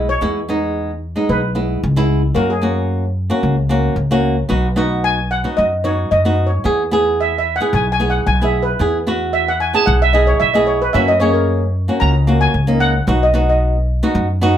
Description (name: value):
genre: calypso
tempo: 112 BPM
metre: 4/4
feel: swing 54% on 16ths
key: E major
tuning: A4 = 440 Hz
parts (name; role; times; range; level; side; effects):
- flamenco guitar; accompaniment; 0.0-14.6 s; G#3 to G#4; -18 LUFS; right 1 dB; none
- upright bass; bass; 0.0-14.6 s; B1 to F#2; -18 LUFS; equal; none
- steel pan; melody; 0.1-13.6 s; G#4 to A#5; -18 LUFS; equal; none
room: moderate studio reverb, RT60 0.5 s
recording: none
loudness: -14 LUFS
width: side -10 dB against mid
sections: 0.0-14.6 A section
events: steel pan solo 0.0-14.6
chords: 0.0 E; 2.4 F#; 4.5 B; 6.7 E; 10.9 F#; 13.1 B